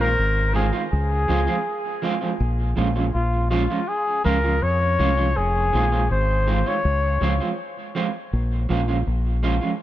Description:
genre	roots reggae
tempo	81 BPM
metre	4/4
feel	straight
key	Bb minor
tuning	A4 = 440 Hz
part	warm flugelhorn	melody	0.0-7.4 s	F4 to Db5	-24 LUFS	left 2 dB	tape echo
part	electric guitar at the edge of break-up	accompaniment	0.0-9.7 s	Eb3 to F4	-26 LUFS	right 4 dB	tape echo
part	fingered electric bass	bass	0.0-9.6 s	F1 to F2	-21 LUFS	equal	none
room	small room reverb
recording	none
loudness	-19 LUFS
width	side -13 dB against mid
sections	0.0-9.8 A section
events	none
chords	0.0 Fm7; 0.9 Dbmaj7; 2.4 Bbm7; 5.4 Fm7; 6.8 Dbmaj7; 8.3 Bbm7

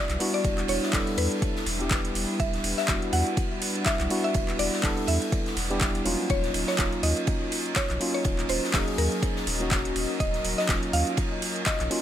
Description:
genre	deep house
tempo	123 BPM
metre	4/4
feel	swing 57% on 16ths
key	unclear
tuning	A4 = 441 Hz
part	mallet-like synth pluck	melody	0.0-11.9 s	A#4 to F#5	-32 LUFS	equal	chorus, ping-pong delay
part	warm analog pad	sustained chords	0.0-12.0 s	F#3 to F#5	-36 LUFS	left 1 dB	chorus, sidechain pumping
part	tine electric piano	stabs	0.0-12.0 s	F#3 to A4	-30 LUFS	equal	sidechain pumping, digital delay
part	warm sub bass	bass	0.1-11.9 s	D#1 to E2	-31 LUFS	equal	sidechain pumping
part	deep house drum kit	drums	0.1-12.0 s	handclaps, hi-hat	-30 LUFS	equal	overdrive, small room ambience
part	oversized low-tuned drum kit	drums	0.1-12.0 s	hi-hat, ride cymbal, snare drum	-34 LUFS	right 2 dB	sidechain pumping on cymbals, high-pass filter on cymbals, small room ambience, sidechain pumping on hats, high-pass filter on hats, high-pass filter on snare, high-pass filter on room
part	electronic kick drum	drums	0.4-11.8 s	none	-29 LUFS	equal	overdrive, small room ambience
room	light reverb, small room ambience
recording	none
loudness	-24 LUFS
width	side -11 dB against mid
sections	0.0-12.0 A section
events	none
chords	0.0 Em7; 6.3 D#m7

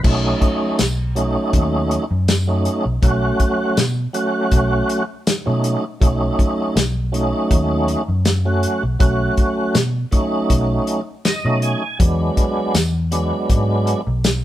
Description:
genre	straight-eighth soul blues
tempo	80 BPM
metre	4/4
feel	swing 54% on 16ths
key	B mixolydian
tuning	A4 = 440 Hz
part	tonewheel organ	accompaniment	0.0-14.0 s	F#3 to G#5	-20 LUFS	right 1 dB	slow rotary speaker, overdrive, chorus vibrato
part	vintage muted fingered electric bass	bass	0.0-14.4 s	B1 to B2	-20 LUFS	equal	none
part	warm soul drum kit	drums	0.0-14.4 s	crash cymbal, hi-hat, kick drum, snare drum, tambourine	-18 LUFS	equal	none
room	light reverb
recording	band playing live in one room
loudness	-16 LUFS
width	side -13 dB against mid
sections	0.0-14.4 A section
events	tonewheel organ fill 10.9-12.0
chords	0.0 B9; 12.0 E9

